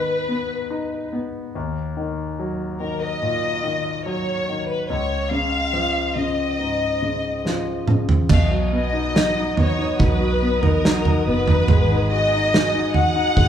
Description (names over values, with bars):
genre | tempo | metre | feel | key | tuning
pop ballad | 71 BPM | 4/4 | straight | unclear | A4 = 439 Hz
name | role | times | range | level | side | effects
warm studio violin section | melody | 0.0-13.5 s | Bb4 to Gb5 | -23 LUFS | left 2 dB | none
clear concert grand piano | accompaniment | 0.0-13.5 s | Db2 to F#4 | -24 LUFS | left 2 dB | none
loose indie drum kit | drums | 7.5-13.5 s | crash cymbal, kick drum, snare drum, toms | -19 LUFS | right 2 dB | none
dark studio string section | sustained chords | 8.3-13.5 s | B3 to D#6 | -31 LUFS | equal | none
vintage muted fingered electric bass | bass | 8.3-13.5 s | F#1 to B1 | -24 LUFS | right 1 dB | none
room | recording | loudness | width
wet large studio reverb, RT60 1.1 s | band playing live in one room | -18 LUFS | side -9 dB against mid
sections
0.0-8.3 A section; 8.3-13.5 B section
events
drum fill 7.4-8.3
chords
0.0 Abm; 1.5 Ebm; 4.9 Dbadd9; 8.3 B; 11.7 Abm7